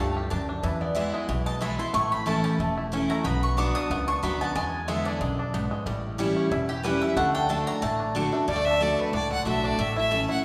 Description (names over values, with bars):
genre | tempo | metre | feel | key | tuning
bluegrass | 184 BPM | 4/4 | swing 54% on 8ths | D major | A4 = 440 Hz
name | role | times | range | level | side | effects
picked steel-string acoustic guitar | accompaniment | 0.0-10.4 s | E2 to F#4 | -31 LUFS | equal | none
bluegrass banjo | arpeggios | 0.0-10.4 s | D3 to G4 | -33 LUFS | equal | none
mandolin | stabs | 0.0-7.9 s | G4 to Eb6 | -32 LUFS | equal | none
upright bass | bass | 0.0-10.2 s | E1 to E2 | -34 LUFS | equal | none
lap resonator guitar | second line | 0.6-1.4, 8.5-9.0 s | B4 to E5 | -31 LUFS | equal | none
clear fiddle | melody | 8.5-10.4 s | B4 to F#5 | -30 LUFS | equal | none
room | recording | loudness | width
wet recital hall reverb, RT60 1.7 s | recorded in a church or concert hall | -26 LUFS | mono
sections
0.0-8.5 A section; 8.5-10.4 B section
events
mandolin solo 0.0-8.5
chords
0.0 D5; 0.6 E; 1.9 A; 3.3 Bm; 4.6 E7; 5.9 A7; 7.2 D; 9.8 A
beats
0.32 | 0.64 0.97 1.29 1.62 | 1.95 2.27 2.60 2.92 | 3.25 3.58 3.90 4.23 | 4.56 4.88 5.21 5.54 | 5.86 6.19 6.52 6.84 | 7.17 7.50 7.82 8.15 | 8.48 8.80 9.13 9.46 | 9.78 10.11 10.44